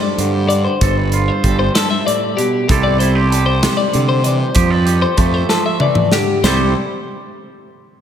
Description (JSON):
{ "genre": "math rock and midwest emo", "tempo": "64 BPM (dotted quarters)", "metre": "6/8", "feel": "straight", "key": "C major", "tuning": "A4 = 440 Hz", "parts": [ { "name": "twangy electric guitar", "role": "accompaniment", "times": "0.0-6.7 s", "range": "G2 to A4", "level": "-20 LUFS", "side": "right 6 dB", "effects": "slapback echo" }, { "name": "twelve-string electric guitar", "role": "arpeggios", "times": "0.0-6.7 s", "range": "G4 to E5", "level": "-19 LUFS", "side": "left 5 dB", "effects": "slapback echo" }, { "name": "fuzz fingered electric bass", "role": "bass", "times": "0.2-6.7 s", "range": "G1 to C3", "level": "-17 LUFS", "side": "right 1 dB", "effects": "overdrive" }, { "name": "modern studio drum kit", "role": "drums", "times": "0.2-6.6 s", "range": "china cymbal, hi-hat, kick drum, snare drum, toms", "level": "-18 LUFS", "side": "equal", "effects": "none" } ], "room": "moderate concert hall reverb, RT60 2.6 s", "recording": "big arena sound", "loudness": "-13 LUFS", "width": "side -9 dB against mid", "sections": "0.0-6.4 A section; 6.4-8.0 B section", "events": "drum fill 5.5-6.4", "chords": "0.0 G9sus4; 2.7 C69; 4.6 Fmaj9; 6.4 C6" }